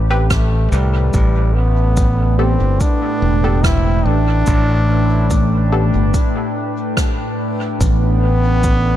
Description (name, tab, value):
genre	ambient dub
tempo	72 BPM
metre	4/4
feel	straight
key	unclear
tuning	A4 = 439 Hz
part	warbly tape-like pad	sustained chords	0.0-9.0 s	A2 to A5	-22 LUFS	left 1 dB	chorus, built-in reverb, phaser
part	modern bright fingered electric bass	bass	0.0-9.0 s	E1 to C2	-15 LUFS	equal	none
part	filtered dub chord stab	stabs	0.1-6.0 s	B3 to B4	-26 LUFS	left 1 dB	chorus, dub echo
part	warm trombone	melody	0.3-9.0 s	G3 to E4	-22 LUFS	equal	dub echo
part	electronic kick drum	drums	0.3-8.8 s	none	-17 LUFS	equal	overdrive, small room ambience
part	rim click and cabasa	drums	0.3-8.8 s	none	-27 LUFS	right 2 dB	small room ambience, dub echo
room	small room ambience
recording	echo-heavy mix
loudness	-13 LUFS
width	side -12 dB against mid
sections	0.0-9.0 A section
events	none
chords	0.0 Am9; 1.1 Gadd9